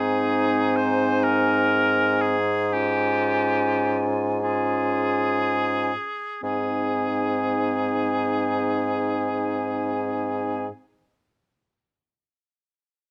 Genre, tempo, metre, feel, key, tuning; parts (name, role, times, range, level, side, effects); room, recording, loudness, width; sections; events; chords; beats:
classical, slow romantic movement for wind quintet; 28-43 BPM (dotted quarters); 6/8; rubato; Ab major; A4 = 440 Hz
mellow hollow silver concert flute; melody; 0.0-10.7 s; Ab5; -31 LUFS; equal
bright oboe; second line; 0.0-10.7 s; G4 to C5; -29 LUFS; equal
bright clarinet; accompaniment; 0.0-10.7 s; Eb4 to F4; -34 LUFS; equal
dark French horn; accompaniment; 0.0-10.7 s; C4 to Db4; -32 LUFS; equal
warm bassoon; bass; 0.0-10.7 s; Ab2; -28 LUFS; equal
light reverb; -23 LUFS; mono
0.0-6.4 A section; 6.4-10.4 B section
slowing down 0.0-6.4
0.0 Ab; 2.7 Db/Ab; 6.4 Ab
1.23 | 2.73 4.43 | 6.43 8.43